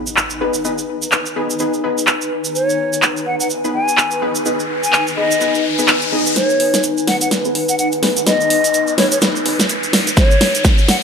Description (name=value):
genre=bass house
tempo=126 BPM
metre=4/4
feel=swing 58% on 16ths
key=G# minor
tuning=A4 = 438 Hz
part: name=impact and riser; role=sound effects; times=0.0-11.0 s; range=none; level=-24 LUFS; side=left 2 dB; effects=none
part: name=granular cloud pad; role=texture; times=0.0-11.0 s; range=D#4 to G#5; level=-21 LUFS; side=left 1 dB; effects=built-in reverb, sidechain pumping
part: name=tube shaker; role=percussion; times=0.1-10.9 s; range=none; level=-23 LUFS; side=right 5 dB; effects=none
part: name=big-room dance drum kit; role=drums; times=0.2-11.0 s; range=handclaps, hi-hat, snare drum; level=-16 LUFS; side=equal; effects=low-pass filter on hats, low-pass filter on snare, low-pass filter on room
part: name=orchestra-hit-like synth stab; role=stabs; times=0.4-9.6 s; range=B3 to D#5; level=-23 LUFS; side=left 3 dB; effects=built-in reverb, sidechain pumping, ping-pong delay
part: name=breathy mellow silver concert flute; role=melody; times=2.6-11.0 s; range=C#5 to G#5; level=-19 LUFS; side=left 2 dB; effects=ping-pong delay
part: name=electronic kick drum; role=drums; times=10.2-10.8 s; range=none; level=-12 LUFS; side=equal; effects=none
room=moderate plate reverb, RT60 1.9 s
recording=none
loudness=-14 LUFS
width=side -6 dB against mid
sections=0.0-6.4 A section; 6.4-11.0 B section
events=impact 0.0-0.6; riser 3.5-6.4, 6.4-11.0; build-up 6.4-11.0; drum fill 6.4-11.0; filter sweep on synth stab 6.4-11.0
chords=0.0 G#m